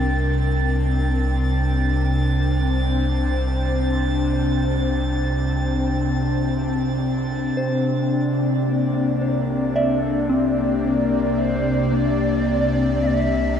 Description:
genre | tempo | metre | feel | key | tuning
ambient | free time | none | none | C mixolydian | A4 = 439 Hz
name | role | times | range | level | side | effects
airy breathy pad | sustained chords | 0.0-13.6 s | C3 to G5 | -20 LUFS | left 1 dB | chorus
warm sub bass | bass | 0.0-13.6 s | C2 | -24 LUFS | equal | none
organ-like drone | drone | 0.0-13.6 s | C3 | -32 LUFS | equal | none
drifting glass-harmonics texture | texture | 0.0-7.6 s | A6 | -33 LUFS | right 3 dB | chorus, built-in reverb
soft synth bell | arpeggios | 7.6-13.6 s | Bb3 to E5 | -27 LUFS | left 1 dB | chorus, ping-pong delay
breathy shakuhachi | melody | 9.3-13.6 s | G4 to E5 | -30 LUFS | equal | ping-pong delay
room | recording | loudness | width
wet cathedral reverb, RT60 6.4 s | dark, warm production | -19 LUFS | side -8 dB against mid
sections
0.0-7.6 A section; 7.6-13.6 B section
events
fade-in on sub bass 7.6-13.6; fade-in on shakuhachi 7.6-13.6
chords
0.0 Gm/C; 7.6 C9

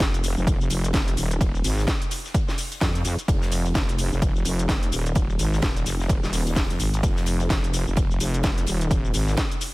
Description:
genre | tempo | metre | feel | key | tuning
bass house | 128 BPM | 4/4 | swing 59% on 16ths | F minor | A4 = 440 Hz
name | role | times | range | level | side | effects
wobble bass | bass | 0.0-9.4 s | Eb1 to F2 | -24 LUFS | equal | chorus, overdrive, sidechain pumping
electronic kick drum | drums | 0.0-9.5 s | none | -24 LUFS | equal | overdrive
garage drum kit | drums | 0.0-9.7 s | hi-hat, shaker, snare drum | -29 LUFS | equal | none
huge arena drum kit | drums | 0.0-9.7 s | hi-hat, ride cymbal, snare drum | -39 LUFS | right 2 dB | high-pass filter on cymbals, high-pass filter on hats, high-pass filter on snare, high-pass filter on room
room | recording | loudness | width
little or no reverb | none | -21 LUFS | side -21 dB against mid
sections
0.0-9.7 A section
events
none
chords
none

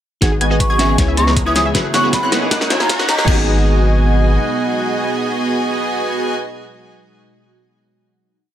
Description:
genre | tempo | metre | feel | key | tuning
future bass | 157 BPM | 4/4 | half-time | G# minor | A4 = 440 Hz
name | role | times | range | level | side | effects
glassy digital keys | accompaniment | 0.2-6.4 s | B3 to F#5 | -24 LUFS | left 1 dB | chorus, sidechain pumping, digital delay
airy breathy pad | sustained chords | 0.2-6.4 s | B2 to F#4 | -30 LUFS | equal | chorus, phaser, sidechain pumping
wide unison pluck | arpeggios | 0.2-6.4 s | F#6 to A#6 | -26 LUFS | equal | sidechain pumping, digital delay
wide unison pluck | arpeggios | 0.2-3.5 s | F#4 to E5 | -28 LUFS | left 1 dB | none
big bright polysynth | riff | 0.2-6.4 s | A#3 to A#5 | -19 LUFS | right 2 dB | lush chorus, sidechain pumping, digital delay
saturated sub bass | bass | 0.2-4.4 s | D#1 to C#2 | -17 LUFS | equal | sidechain pumping
electronic kick drum | drums | 0.2-3.4 s | none | -18 LUFS | equal | none
pop drum kit | drums | 0.2-3.4 s | crash cymbal, hi-hat, snare drum | -20 LUFS | equal | high-pass filter on snare, high-pass filter on hats, high-pass filter on cymbals
riser | sound effects | 1.4-3.3 s | none | -25 LUFS | equal | none
mellow hollow wooden flute | melody | 0.6-3.2 s | A#5 to D#6 | -20 LUFS | equal | sidechain pumping, digital delay
room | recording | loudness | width
light reverb, digital ambience | high-pass filter | -13 LUFS | side -11 dB against mid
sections
0.2-3.3 build; 3.3-6.3 final chord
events
build-up 0.2-3.3; drum fill 0.2-3.3; filter sweep on analog polysynth 0.2-3.3; filter sweep 0.2-3.3; riser 1.4-3.3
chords
0.2 G#m7; 1.0 C#m7; 1.7 F#9sus4; 2.5 D#m7; 3.3 G#m7

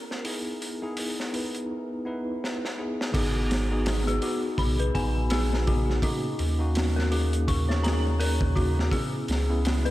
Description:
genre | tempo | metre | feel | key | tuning
trip hop | 83 BPM | 4/4 | swing 58% on 16ths | G# minor | A4 = 440 Hz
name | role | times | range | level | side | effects
bell-like tine electric piano | accompaniment | 0.0-9.9 s | A#3 to B4 | -30 LUFS | equal | harmonic tremolo, vintage 12-bit sampler grit, tape echo
flickering grainy texture | texture | 0.0-1.7 s | A#4 | -46 LUFS | left 1 dB | none
crunchy breakbeat drum kit | drums | 0.1-9.9 s | crash cymbal, hi-hat, kick drum, snare drum | -29 LUFS | equal | high-pass filter on kick, high-pass filter on hats, high-pass filter on cymbals, high-pass filter on snare, high-pass filter on room, gated reverb
dark detuned synth bell | arpeggios | 3.1-9.9 s | F#4 to C#6 | -33 LUFS | left 2 dB | chorus, phaser, tape echo
warm sub bass | bass | 3.1-9.9 s | G#1 to D#2 | -26 LUFS | equal | none
room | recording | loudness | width
light reverb, small room reverb | bright 1980s-style digital production | -24 LUFS | side -16 dB against mid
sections
0.0-3.1 A section; 3.1-9.9 B section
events
drum fill 2.4-3.1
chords
0.3 Emaj7; 3.1 G#m7; 6.0 D#m7; 8.9 C#m7

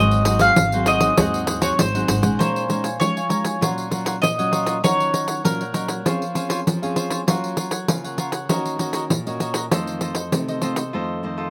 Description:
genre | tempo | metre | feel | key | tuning
samba and choro | 98 BPM | 4/4 | straight | Bb minor | A4 = 440 Hz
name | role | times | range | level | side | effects
bowl-back mandolin | melody | 0.0-6.9 s | Bb4 to F5 | -23 LUFS | equal | none
cavaquinho | accompaniment | 0.0-11.5 s | Eb4 to Ab5 | -30 LUFS | equal | none
nylon-string guitar | accompaniment | 0.0-11.5 s | F2 to Ab4 | -29 LUFS | equal | slapback echo
upright bass | bass | 0.0-2.4 s | Ab1 to Eb2 | -25 LUFS | equal | none
pandeiro | percussion | 0.1-10.9 s | none | -25 LUFS | equal | none
room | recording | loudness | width
light reverb | recorded outdoors, with no room sound | -21 LUFS | mono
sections
0.0-2.4 A section; 2.4-11.5 B section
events
break 10.9-11.5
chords
0.0 Ab7; 2.4 Bbm11; 3.6 Gbmaj7/Bb; 4.8 Ebm9; 6.1 Dbmaj7/F; 7.3 Gbmaj7; 8.5 Ebm7; 9.7 F7

